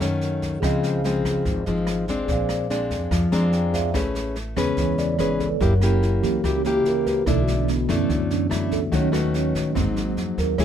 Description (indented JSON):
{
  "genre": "bossa nova",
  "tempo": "144 BPM",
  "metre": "4/4",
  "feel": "straight",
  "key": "unclear",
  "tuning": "A4 = 439 Hz",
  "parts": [
    { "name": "mellow tine electric piano", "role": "accompaniment", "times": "0.0-10.6 s", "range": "C#3 to Bb5", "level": "-26 LUFS", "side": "right 2 dB", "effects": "medium stereo tremolo" },
    { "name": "nylon-string guitar", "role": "accompaniment", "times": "0.0-10.6 s", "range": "F#2 to B4", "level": "-24 LUFS", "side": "left 2 dB", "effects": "none" },
    { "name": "upright bass", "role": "bass", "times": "0.0-10.6 s", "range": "F#1 to A2", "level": "-26 LUFS", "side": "right 1 dB", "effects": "none" },
    { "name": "jazz brush drum kit", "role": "drums", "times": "0.0-10.6 s", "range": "kick drum, rim click, snare drum", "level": "-29 LUFS", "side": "right 1 dB", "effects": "none" }
  ],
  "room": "little or no reverb",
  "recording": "minimal, uncompressed stereo recording",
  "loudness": "-20 LUFS",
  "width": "side -9 dB against mid",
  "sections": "0.0-3.9 A section; 3.9-10.6 B section",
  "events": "tine electric piano fill 3.1-3.9; tine electric piano solo 3.9-10.6",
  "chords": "0.0 B9 (rootless); 0.6 C#maj7; 2.3 Bb9; 3.9 Amaj9; 5.6 F#7b9; 7.3 Bm11; 8.9 D#m7b5; 9.8 G#7"
}